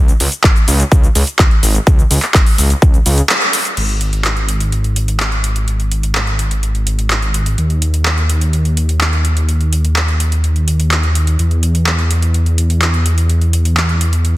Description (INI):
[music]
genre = EDM, festival progressive house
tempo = 126 BPM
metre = 4/4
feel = straight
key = unclear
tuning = A4 = 440 Hz
[part]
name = detuned saw bass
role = bass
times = 0.0-14.4 s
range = G#1 to E2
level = -14 LUFS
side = equal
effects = sidechain pumping
[part]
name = big-room dance drum kit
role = drums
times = 0.1-14.3 s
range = crash cymbal, handclaps, hi-hat, shaker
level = -17 LUFS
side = equal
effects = overdrive
[part]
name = electronic kick drum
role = drums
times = 0.4-2.9 s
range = none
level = -9 LUFS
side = equal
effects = overdrive
[sound]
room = light reverb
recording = dense, heavily limited modern master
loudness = -11 LUFS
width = side -17 dB against mid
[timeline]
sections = 0.0-3.8 A section; 3.8-14.4 B section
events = drop 0.0-3.8; break 3.3-3.8; band accent 3.3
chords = none